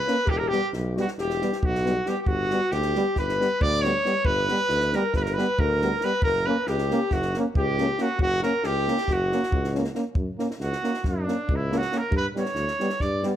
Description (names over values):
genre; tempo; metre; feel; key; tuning
balkan folk, Balkan brass band; 274 BPM (eighths); 9/8; straight; F# phrygian dominant; A4 = 440 Hz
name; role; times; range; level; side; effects
bright trumpet; melody; 0.0-13.2 s; D4 to D5; -26 LUFS; right 2 dB; none
dark clarinet; second line; 0.0-9.8 s; F#4 to D5; -30 LUFS; left 5 dB; none
clear trombone; accompaniment; 0.1-13.3 s; G3 to A#3; -31 LUFS; right 3 dB; none
warm euphonium; accompaniment; 0.1-13.3 s; B3 to C#4; -33 LUFS; left 6 dB; none
compact cocktail drum kit; percussion; 0.1-13.3 s; kick drum, snare drum; -29 LUFS; equal; none
warm tuba; bass; 0.3-13.3 s; E1 to G2; -29 LUFS; equal; none
room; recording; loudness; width
light reverb; none; -22 LUFS; side -11 dB against mid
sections
0.0-10.2 A section; 10.2-13.4 B section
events
trumpet solo 10.2-13.4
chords
0.3 Em; 2.3 G; 6.2 F#; 12.1 G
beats
0.05 | 0.28 0.50 0.72 0.94 1.16 1.38 1.60 1.82 2.05 | 2.27 2.49 2.71 2.93 3.15 3.37 3.59 3.81 4.03 | 4.25 4.47 4.69 4.91 5.13 5.35 5.57 5.79 6.01 | 6.23 6.45 6.67 6.89 7.10 7.32 7.54 7.76 7.98 | 8.20 8.42 8.63 8.85 9.07 9.29 9.51 9.73 9.94 | 10.16 10.38 10.60 10.82 11.03 11.25 11.47 11.69 11.91 | 12.12 12.34 12.56 12.78 12.99 13.21